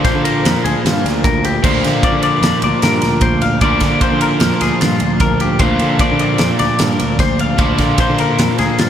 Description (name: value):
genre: math rock and midwest emo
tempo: 151 BPM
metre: 5/4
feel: straight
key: unclear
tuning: A4 = 440 Hz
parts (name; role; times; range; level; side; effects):
- clean electric guitar; arpeggios; 0.0-8.9 s; F4 to F5; -18 LUFS; left 5 dB; lush chorus, diffuse ambient delay
- crunchy overdriven guitar; riff; 0.0-8.9 s; Bb2 to F4; -17 LUFS; right 1 dB; wide subtle chorus
- growling fingered electric bass; bass; 0.0-8.9 s; D2 to D3; -19 LUFS; right 1 dB; overdrive
- loose indie drum kit; drums; 0.0-8.9 s; crash cymbal, kick drum, ride cymbal, snare drum; -18 LUFS; right 1 dB; none
room: moderate huge ambient reverb, RT60 4.5 s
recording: dreamy mix soaked in reverb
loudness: -12 LUFS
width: side -9 dB against mid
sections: 0.0-8.9 A section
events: none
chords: 0.0 Bb/D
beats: 0.05 0.44 0.84 1.24 | 1.63 2.03 2.43 2.83 3.22 | 3.62 4.02 4.41 4.81 5.21 | 5.61 6.00 6.40 6.80 7.20 | 7.59 7.99 8.39 8.79